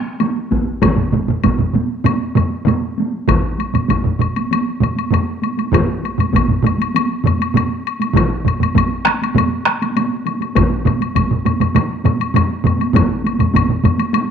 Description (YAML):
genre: japanese traditional, taiko drum ensemble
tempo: 99 BPM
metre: 4/4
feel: straight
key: none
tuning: none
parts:
  - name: taiko ensemble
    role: percussion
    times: 0.0-14.3 s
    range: none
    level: -19 LUFS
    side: right 2 dB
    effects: none
  - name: woodblock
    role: percussion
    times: 0.2-14.3 s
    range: none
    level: -23 LUFS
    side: left 12 dB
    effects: none
  - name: taiko ensemble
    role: percussion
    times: 0.5-13.7 s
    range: none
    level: -20 LUFS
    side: left 1 dB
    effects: none
  - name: solo taiko drums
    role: percussion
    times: 0.8-14.0 s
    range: none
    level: -19 LUFS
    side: right 6 dB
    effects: none
  - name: taiko ensemble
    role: percussion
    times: 0.8-14.0 s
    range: none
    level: -20 LUFS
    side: left 4 dB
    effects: none
room: moderate spring reverb, RT60 1.4 s, studio reverb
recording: 1960s-style stereo with parts hard left and right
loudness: -14 LUFS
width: side -8 dB against mid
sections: 0.0-3.3 A section; 3.3-14.3 B section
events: speeding up 0.0-14.3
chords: none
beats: 0.21 | 0.82 1.44 2.06 2.67 | 3.29 3.90 4.51 5.12 | 5.73 6.34 6.95 7.55 | 8.16 8.76 9.37 9.97 | 10.57 11.17 11.77 12.36 | 12.96 13.55 14.14